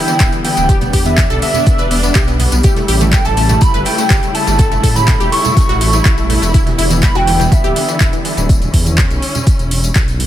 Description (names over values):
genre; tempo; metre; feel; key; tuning
progressive house; 123 BPM; 4/4; straight; E dorian; A4 = 439 Hz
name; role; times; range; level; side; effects
warm velvety synth lead; melody; 0.0-8.5 s; E5 to C#6; -19 LUFS; right 1 dB; chorus, sidechain pumping, ping-pong delay
soft synth bell; second line; 0.0-8.5 s; E5 to C#6; -26 LUFS; right 1 dB; none
warm symphonic string section; sustained chords; 0.0-10.3 s; C#3 to E4; -21 LUFS; left 1 dB; sidechain pumping
wide unison pluck; arpeggios; 0.0-8.5 s; E3 to B4; -20 LUFS; equal; sidechain pumping, tape echo
deep house drum kit; drums; 0.1-10.3 s; handclaps, hi-hat; -20 LUFS; equal; overdrive
vintage drum kit; drums; 0.1-10.3 s; hi-hat, shaker, snare drum; -30 LUFS; right 2 dB; none
tambourine; percussion; 0.1-10.2 s; none; -26 LUFS; left 6 dB; none
dark detuned saw bass; bass; 0.2-10.3 s; D1 to A2; -16 LUFS; equal; sidechain pumping
electronic kick drum; drums; 0.2-10.1 s; none; -13 LUFS; equal; overdrive
congas; percussion; 0.8-10.3 s; none; -23 LUFS; right 4 dB; sidechain pumping on perc
room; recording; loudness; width
small room ambience; none; -10 LUFS; side -12 dB against mid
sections
0.0-10.3 A section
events
none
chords
0.0 Em7; 2.6 A7; 6.5 Em7